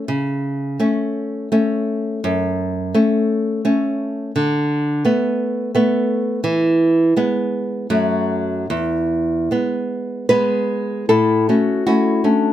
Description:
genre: romantic duo for clarinet and classical guitar.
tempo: 73-88 BPM.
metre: 3/4.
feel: rubato.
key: A major.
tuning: A4 = 440 Hz.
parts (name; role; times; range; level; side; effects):
nylon-string guitar; accompaniment; 0.0-12.5 s; E2 to B4; -17 LUFS; equal; none.
warm clarinet; melody; 11.1-12.5 s; D4 to F#4; -19 LUFS; left 5 dB; none.
room: light reverb.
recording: none.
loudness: -16 LUFS.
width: side -12 dB against mid.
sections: 0.0-11.1 A section; 11.1-12.5 B section.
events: none.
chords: 0.1 A/C#; 2.2 F#m; 4.3 Bm7/D; 6.4 E; 7.9 F#m; 8.7 E; 11.1 A.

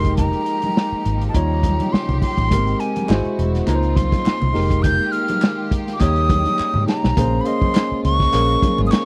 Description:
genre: lush 1970s-style soul.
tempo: 103 BPM.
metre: 4/4.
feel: swing 54% on 16ths.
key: Bb dorian.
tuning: A4 = 440 Hz.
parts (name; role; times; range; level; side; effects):
breathy silver concert flute; melody; 0.0-9.1 s; Ab5 to G6; -25 LUFS; equal; none.
tine electric piano; accompaniment; 0.0-9.1 s; G3 to Eb5; -26 LUFS; equal; none.
rich studio string section; sustained chords; 0.0-9.1 s; B2 to G4; -33 LUFS; equal; none.
vintage muted fingered electric bass; bass; 0.0-9.0 s; E1 to Ab2; -23 LUFS; equal; none.
vintage drum kit; drums; 0.0-9.1 s; hi-hat, kick drum, snare drum; -22 LUFS; equal; none.
congas; percussion; 0.2-9.1 s; none; -30 LUFS; equal; none.
group handclap; percussion; 3.1-9.1 s; none; -37 LUFS; equal; none.
room: little or no reverb.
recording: dry, close 1970s-style studio recording.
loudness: -19 LUFS.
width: mono.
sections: 0.0-7.2 A section; 7.2-9.1 B section.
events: drum fill 6.6-7.2.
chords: 0.0 Fm11; 1.3 Eb9; 2.5 Abmaj9; 3.1 Ab7alt; 3.7 Dbmaj13; 4.5 Fm11; 6.0 Eb7; 7.2 Bbm9.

